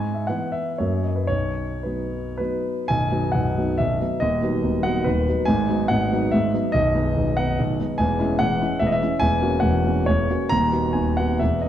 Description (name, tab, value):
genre	classical, romantic triple-time dance for piano with dotted rhythms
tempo	104-153 BPM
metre	3/4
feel	rubato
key	B major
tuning	A4 = 442 Hz
part	warm grand piano	solo	0.0-11.7 s	B0 to A#5	-20 LUFS	equal	none
room	moderate scoring stage reverb, RT60 1.8 s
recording	dark, warm production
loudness	-20 LUFS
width	side -11 dB against mid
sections	0.0-2.9 A section; 2.9-11.7 B section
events	none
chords	0.0 E/G#; 0.8 F#; 1.3 B; 4.2 B/D#; 5.5 G#m7; 6.8 G#m/B; 8.0 C#m/E; 9.2 F#7/E; 10.5 B/D#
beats	0.29 0.78 | 1.29 1.84 2.39 | 2.89 3.34 3.79 | 4.21 4.64 5.07 | 5.49 5.91 6.34 | 6.75 7.16 7.59 | 7.99 8.40 8.82 | 9.22 9.63 10.08 | 10.49 10.93 11.39